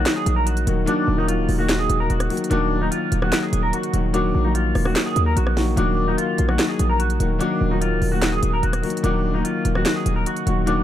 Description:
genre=hip hop, trap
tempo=147 BPM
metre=4/4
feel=half-time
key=Eb harmonic minor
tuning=A4 = 440 Hz
part: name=clean electric guitar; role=melody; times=0.0-10.8 s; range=D4 to Bb4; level=-25 LUFS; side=right 2 dB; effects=lush chorus, ping-pong delay
part: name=clear grand piano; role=accompaniment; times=0.0-10.8 s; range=Eb3 to Gb4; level=-23 LUFS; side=left 4 dB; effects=none
part: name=hard-hitting 808-style bass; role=bass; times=0.0-10.8 s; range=D1 to Eb2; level=-21 LUFS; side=right 1 dB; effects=none
part: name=trap drum kit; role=drums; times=0.1-10.8 s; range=handclaps, hi-hat, rim click, snare drum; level=-26 LUFS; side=right 1 dB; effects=none
room=little or no reverb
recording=dark, warm production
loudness=-18 LUFS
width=side -11 dB against mid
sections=0.0-10.8 A section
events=none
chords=0.0 Ebm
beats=0.06 0.47 | 0.88 1.28 1.69 2.10 | 2.51 2.92 3.33 3.73 | 4.14 4.55 4.96 5.37 | 5.77 6.18 6.59 7.00 | 7.41 7.81 8.22 8.63 | 9.04 9.45 9.86 10.26 | 10.67

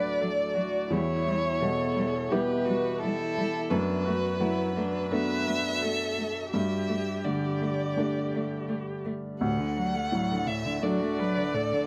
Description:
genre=neoclassical piano and strings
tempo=85 BPM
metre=4/4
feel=rubato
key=D major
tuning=A4 = 440 Hz
part: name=warm violin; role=melody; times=0.0-11.9 s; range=A4 to F#5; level=-33 LUFS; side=equal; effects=none
part: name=felt-muted upright piano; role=accompaniment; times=0.0-11.9 s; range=D2 to A4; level=-33 LUFS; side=equal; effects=none
part: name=warm viola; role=accompaniment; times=0.0-11.9 s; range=D4 to B4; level=-38 LUFS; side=equal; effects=none
part: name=warbly tape-like pad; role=sustained chords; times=0.0-11.9 s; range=G3 to F#5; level=-40 LUFS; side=equal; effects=chorus, built-in reverb
part: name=rich cello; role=second line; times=0.2-11.9 s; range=A2 to A3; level=-36 LUFS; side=equal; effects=none
room=light reverb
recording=none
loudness=-28 LUFS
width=mono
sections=0.0-11.9 A section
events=none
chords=0.0 D; 0.9 Em; 3.7 Bm7/F#; 6.5 Gsus2; 9.4 D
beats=0.21 | 0.91 1.62 2.31 3.01 | 3.71 4.40 5.12 5.83 | 6.54 7.25 7.98 8.70 | 9.42 10.13 10.84 11.54

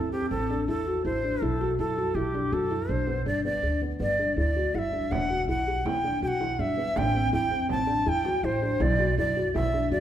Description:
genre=contemporary instrumental, chamber music in an uneven meter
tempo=162 BPM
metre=5/4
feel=straight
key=unclear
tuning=A4 = 440 Hz
part: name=breathy bright shakuhachi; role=melody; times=0.0-10.0 s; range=G4 to A5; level=-28 LUFS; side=right 1 dB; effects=none
part: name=felt-muted upright piano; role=arpeggios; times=0.0-10.0 s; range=B3 to G4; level=-29 LUFS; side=left 2 dB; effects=none
part: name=upright bass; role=bass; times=0.0-10.0 s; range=E1 to F#2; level=-30 LUFS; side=right 1 dB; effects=none
part: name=frame drum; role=percussion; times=5.1-9.7 s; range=none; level=-38 LUFS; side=right 5 dB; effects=none
room=wet recital hall reverb, RT60 1.6 s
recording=heard from further back in the room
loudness=-24 LUFS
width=side -10 dB against mid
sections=0.0-10.0 A section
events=none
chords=0.0 Am; 1.4 B7sus4; 3.3 G; 5.1 Em9; 7.0 Am7; 8.8 Bsus4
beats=0.31 0.68 1.05 | 1.42 1.79 2.16 2.53 2.90 | 3.27 3.64 4.01 4.38 4.75 | 5.12 5.49 5.86 6.23 6.59 | 6.96 7.33 7.70 8.07 8.44 | 8.81 9.18 9.55 9.91

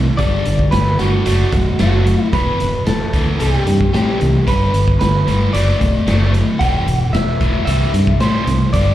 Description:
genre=indie rock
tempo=112 BPM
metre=4/4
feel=straight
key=G major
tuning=A4 = 440 Hz
part: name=thick fuzz guitar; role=riff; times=0.0-8.9 s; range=E2 to D4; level=-20 LUFS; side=equal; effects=distortion
part: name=fingered electric bass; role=bass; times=0.0-8.9 s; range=E1 to A2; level=-16 LUFS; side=equal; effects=none
part: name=electric guitar at the edge of break-up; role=melody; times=0.2-8.9 s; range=F#4 to G5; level=-21 LUFS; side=right 1 dB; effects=slapback echo
part: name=raw garage drum kit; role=drums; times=0.2-8.9 s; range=hi-hat, kick drum, snare drum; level=-19 LUFS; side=equal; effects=none
room=little or no reverb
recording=live gig heard through the venue's PA, club reverb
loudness=-13 LUFS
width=side -13 dB against mid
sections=0.0-8.9 A section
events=none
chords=0.2 G5; 1.3 D; 2.3 E5; 3.4 C6; 4.5 G; 5.5 D; 6.6 Em; 7.7 C6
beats=| 0.19 0.72 1.26 1.79 | 2.33 2.86 3.40 3.93 | 4.47 5.00 5.54 6.07 | 6.61 7.14 7.67 8.21 | 8.74

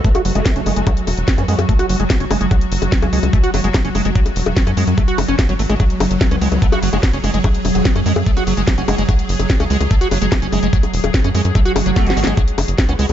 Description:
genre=psychedelic trance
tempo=146 BPM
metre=4/4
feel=straight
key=F# minor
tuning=A4 = 440 Hz
part: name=formant-sweep wobble bass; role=second line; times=0.0-1.5, 6.3-8.9, 12.9-13.1 s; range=A3 to F#4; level=-30 LUFS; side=right 2 dB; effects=wide subtle chorus, sidechain pumping, high-pass filter, digital delay
part: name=evolving wavetable pad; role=sustained chords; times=0.0-13.1 s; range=F#3 to G#4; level=-22 LUFS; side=right 1 dB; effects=ensemble chorus, built-in reverb, sidechain pumping
part: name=liquid acid bass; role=riff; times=0.0-13.1 s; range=F#3 to F#4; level=-22 LUFS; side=moving between left 2 dB and right 5 dB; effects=chorus, auto-pan, sidechain pumping, dub echo
part: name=drum and bass drum kit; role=drums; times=0.0-13.1 s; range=bongos, hi-hat, snare drum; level=-22 LUFS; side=left 3 dB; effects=none
part: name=electronic kick drum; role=drums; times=0.0-12.9 s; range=none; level=-16 LUFS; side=equal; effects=none
part: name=tight sequencer bass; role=bass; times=0.3-13.1 s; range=E1 to F#2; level=-18 LUFS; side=equal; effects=none
part: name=swell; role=sound effects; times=11.7-12.4 s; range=none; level=-26 LUFS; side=right 2 dB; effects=none
room=light reverb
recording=nothing above 7.6 kHz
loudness=-14 LUFS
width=side -10 dB against mid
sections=0.0-13.1 A section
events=swell 11.7-12.4; drum fill 12.0-12.4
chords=0.0 F#5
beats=0.04 0.46 | 0.87 1.28 1.69 2.10 | 2.51 2.92 3.33 3.74 | 4.16 4.57 4.98 5.39 | 5.80 6.21 6.62 7.03 | 7.44 7.85 8.26 8.68 | 9.09 9.50 9.91 10.32 | 10.73 11.14 11.55 11.96 | 12.37 12.79

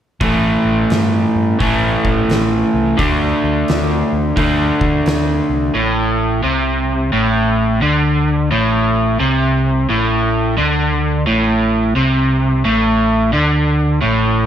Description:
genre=blues rock power trio and southern rock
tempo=87 BPM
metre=4/4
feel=swing 64% on 8ths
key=A minor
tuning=A4 = 445 Hz
part: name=crunchy overdriven guitar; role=riff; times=0.2-14.5 s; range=A2 to D4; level=-14 LUFS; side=equal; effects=none
part: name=overdriven fingered electric bass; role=bass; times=0.2-14.5 s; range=A1 to G2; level=-19 LUFS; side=equal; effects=none
part: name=oversized low-tuned drum kit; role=drums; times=0.2-5.3 s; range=hi-hat, kick drum, snare drum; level=-22 LUFS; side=equal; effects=none
room=moderate large studio reverb, RT60 1.2 s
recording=none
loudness=-13 LUFS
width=side -9 dB against mid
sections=0.2-5.8 A section; 5.8-14.5 B section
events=none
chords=0.2 A7(no3); 3.0 D5; 5.8 Am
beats=| 0.21 0.90 1.60 2.29 | 2.99 3.68 4.38 5.07 | 5.76 6.45 7.14 7.83 | 8.52 9.21 9.90 10.59 | 11.28 11.97 12.66 13.35 | 14.04

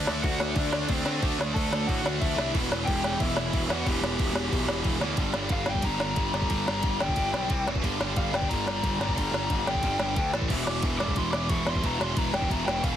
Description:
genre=punk rock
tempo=181 BPM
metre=4/4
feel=straight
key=G major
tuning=A4 = 441 Hz
part: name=distorted electric guitar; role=riff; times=0.0-13.0 s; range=E2 to D4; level=-31 LUFS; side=right 1 dB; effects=overdrive
part: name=heavy high-gain guitar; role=riff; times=0.0-13.0 s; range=E2 to D4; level=-33 LUFS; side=right 1 dB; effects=distortion
part: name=fuzz picked electric bass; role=bass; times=0.0-13.0 s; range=E1 to D3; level=-32 LUFS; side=equal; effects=overdrive
part: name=organic electronic drum kit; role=drums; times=0.1-12.9 s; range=crash cymbal, kick drum, ride cymbal, snare drum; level=-29 LUFS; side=equal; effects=none
part: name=lead guitar through a small cranked amp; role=melody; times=0.2-13.0 s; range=C4 to D6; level=-31 LUFS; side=left 3 dB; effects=overdrive
room=light reverb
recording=dense, heavily limited modern master, lossy compression artefacts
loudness=-24 LUFS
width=side -10 dB against mid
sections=0.0-5.2 A section; 5.2-13.0 B section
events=lead electric guitar solo 5.2-13.0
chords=0.0 D; 2.5 Em; 5.2 G5; 7.5 C5; 7.7 E5; 7.8 G5; 10.2 D5; 10.3 A5; 10.5 E5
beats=0.23 0.56 0.89 | 1.22 1.55 1.88 2.21 | 2.54 2.87 3.19 3.52 | 3.85 4.18 4.51 4.85 | 5.18 5.51 5.84 6.17 | 6.50 6.83 7.17 7.50 | 7.83 8.17 8.50 8.83 | 9.16 9.50 9.83 10.16 | 10.50 10.83 11.17 11.50 | 11.83 12.16 12.50 12.83

